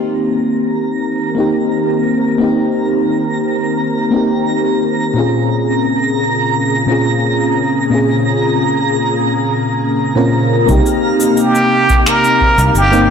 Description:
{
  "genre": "sunset chillout",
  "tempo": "87 BPM",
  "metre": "4/4",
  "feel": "straight",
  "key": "unclear",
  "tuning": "A4 = 440 Hz",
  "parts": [
    { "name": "mellow FM electric piano", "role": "accompaniment", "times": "0.0-13.1 s", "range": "Bb2 to Bb4", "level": "-14 LUFS", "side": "left 1 dB", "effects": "chorus, auto-pan, low-pass filter, tape echo" },
    { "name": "soft string machine", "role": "sustained chords", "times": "0.0-13.1 s", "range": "C3 to Bb4", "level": "-21 LUFS", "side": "equal", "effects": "ensemble chorus" },
    { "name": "twinkling granular texture", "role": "texture", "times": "0.3-13.1 s", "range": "F5 to Bb5", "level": "-21 LUFS", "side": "right 3 dB", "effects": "built-in reverb" },
    { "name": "fingered electric bass", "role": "bass", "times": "10.7-13.1 s", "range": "G1 to C2", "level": "-14 LUFS", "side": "equal", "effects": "none" },
    { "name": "electronic kick drum", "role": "drums", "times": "10.7-12.5 s", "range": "none", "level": "-15 LUFS", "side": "equal", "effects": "none" },
    { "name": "electronic shaker and finger snaps", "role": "drums", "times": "10.7-13.1 s", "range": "none", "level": "-21 LUFS", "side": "left 1 dB", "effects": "soft clipping on snare" },
    { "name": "trumpet with plunger mute", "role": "melody", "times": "11.4-13.1 s", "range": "G4 to Bb4", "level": "-12 LUFS", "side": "right 1 dB", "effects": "tape echo" }
  ],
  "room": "moderate plate reverb, RT60 2.5 s",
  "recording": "blown-out, overdriven recording, overdrive",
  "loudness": "-12 LUFS",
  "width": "side -6 dB against mid",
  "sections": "0.0-10.7 A section; 10.7-13.1 B section",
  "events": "filter sweep on string machine 0.0-10.7",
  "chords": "0.0 Cm7; 5.2 Bbm7; 10.7 Cm7"
}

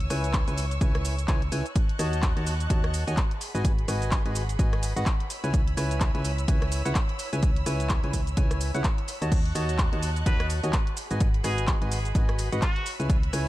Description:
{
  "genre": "piano house",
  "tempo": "127 BPM",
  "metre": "4/4",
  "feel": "swing 58% on 16ths",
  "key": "C# minor",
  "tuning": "A4 = 440 Hz",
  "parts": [
    { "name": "muted symphonic violin section", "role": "sustained chords", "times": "0.0-13.5 s", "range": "G#4 to F#6", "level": "-38 LUFS", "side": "right 1 dB", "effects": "sidechain pumping" },
    { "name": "solid FM bass", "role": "bass", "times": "0.0-13.5 s", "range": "G#1 to D#2", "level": "-28 LUFS", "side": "equal", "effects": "sidechain pumping" },
    { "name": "house drum kit", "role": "drums", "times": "0.0-13.4 s", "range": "cabasa, crash cymbal, handclaps, hi-hat, rim click", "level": "-34 LUFS", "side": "equal", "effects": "none" },
    { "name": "percussive organ stab", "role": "riff", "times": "0.1-13.5 s", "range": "E4 to A5", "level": "-33 LUFS", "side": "equal", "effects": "chorus, sidechain pumping, digital delay" },
    { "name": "electronic kick drum", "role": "drums", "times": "0.3-13.2 s", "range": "none", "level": "-24 LUFS", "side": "equal", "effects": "none" },
    { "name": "trumpet with straight mute", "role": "melody", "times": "10.3-12.9 s", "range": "F#4 to B4", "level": "-36 LUFS", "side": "equal", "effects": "digital delay" }
  ],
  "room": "little or no reverb",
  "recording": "dark, warm production",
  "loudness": "-23 LUFS",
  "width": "side -16 dB against mid",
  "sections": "0.0-13.5 A section",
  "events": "none",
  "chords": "0.0 C#m7; 1.8 D#m7b5; 3.4 G#m7; 5.3 C#m7; 9.3 D#m7b5; 11.0 G#m7; 12.9 C#m7"
}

